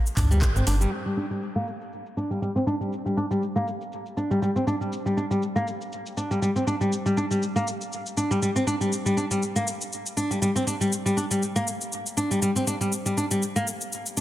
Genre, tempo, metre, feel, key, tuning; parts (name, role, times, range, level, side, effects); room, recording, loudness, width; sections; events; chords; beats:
afro house; 120 BPM; 4/4; swing 55% on 16ths; G minor; A4 = 440 Hz
afro-pop drum kit; drums; 0.1-14.2 s; crash cymbal, handclaps, hi-hat, rim click, shaker, toms; -32 LUFS; left 1 dB; low-pass filter on perc, low-pass filter on snare, low-pass filter on toms, low-pass filter on hats, low-pass filter on cymbals, low-pass filter on room
flamenco guitar; arpeggios; 0.2-14.2 s; G3 to D4; -24 LUFS; equal; sidechain pumping, low-pass filter, dub echo
warm sub bass; bass; 0.2-0.9 s; G1 to D2; -22 LUFS; equal; sidechain pumping
electronic kick drum; drums; 0.2-0.5 s; -24 LUFS; equal
moderate plate reverb, RT60 2.5 s; dense, heavily limited modern master; -23 LUFS; side -14 dB against mid
0.9-14.2 A section
band accent 0.4; filter sweep on drum 0.9-14.2; filter sweep on nylon-string guitar 0.9-14.2
0.0 G5
0.42 | 0.92 1.42 1.92 2.42 | 2.92 3.42 3.92 4.42 | 4.92 5.42 5.92 6.42 | 6.92 7.42 7.92 8.42 | 8.92 9.42 9.92 10.42 | 10.92 11.42 11.92 12.42 | 12.92 13.42 13.92